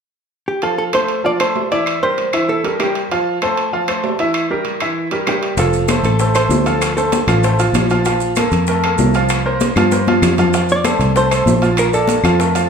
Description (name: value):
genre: latin, salsa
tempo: 194 BPM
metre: 4/4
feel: straight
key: F major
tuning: A4 = 441 Hz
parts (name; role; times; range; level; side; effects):
- hollow-body jazz guitar; melody; 0.5-3.0, 5.3-7.5, 10.7-12.7 s; G4 to D5; -19 LUFS; right 1 dB; none
- bright grand piano; accompaniment; 0.6-12.7 s; E3 to F5; -17 LUFS; equal; none
- timbales; percussion; 0.6-12.7 s; none; -24 LUFS; right 4 dB; none
- claves; percussion; 0.9-12.4 s; none; -28 LUFS; left 4 dB; none
- fingered electric bass; bass; 5.6-12.7 s; F1 to G2; -17 LUFS; equal; none
- bongos; percussion; 5.6-12.7 s; none; -26 LUFS; left 5 dB; none
- congas; percussion; 5.6-12.7 s; none; -22 LUFS; left 2 dB; none
- maracas; percussion; 5.6-12.7 s; none; -30 LUFS; right 6 dB; none
room: moderate large studio reverb, RT60 0.9 s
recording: band playing live in one room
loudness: -13 LUFS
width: side -6 dB against mid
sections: 0.6-5.6 A section; 5.6-12.7 B section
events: drum fill 9.8-10.5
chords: 0.0 N.C.; 0.6 F; 1.9 C7; 3.1 F; 4.3 Edim; 5.6 F; 6.8 Dm7; 8.1 Bb5; 9.3 C7sus4; 10.5 F6; 11.8 Bbmaj7